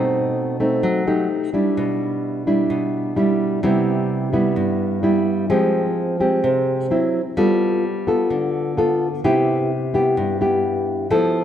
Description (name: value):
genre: bossa nova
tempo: 128 BPM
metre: 4/4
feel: straight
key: C major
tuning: A4 = 440 Hz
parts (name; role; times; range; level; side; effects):
- nylon-string guitar; solo; 0.0-11.4 s; G2 to A4; -17 LUFS; equal; none
room: wet echo chamber reverb, RT60 2.5 s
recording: heard from further back in the room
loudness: -17 LUFS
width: side -10 dB against mid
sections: 0.0-11.4 A section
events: none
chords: 0.0 B7b9; 1.3 Ebmaj7#11; 1.8 Em7/B; 3.6 Cmaj7; 5.5 Fmadd9; 6.9 C; 7.4 G9; 9.2 Cmaj7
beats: 0.36 0.83 1.29 | 1.76 2.23 2.70 3.16 | 3.63 4.10 4.57 5.03 | 5.50 5.97 6.43 6.90 | 7.37 7.83 8.30 8.77 | 9.24 9.70 10.17 10.64 | 11.10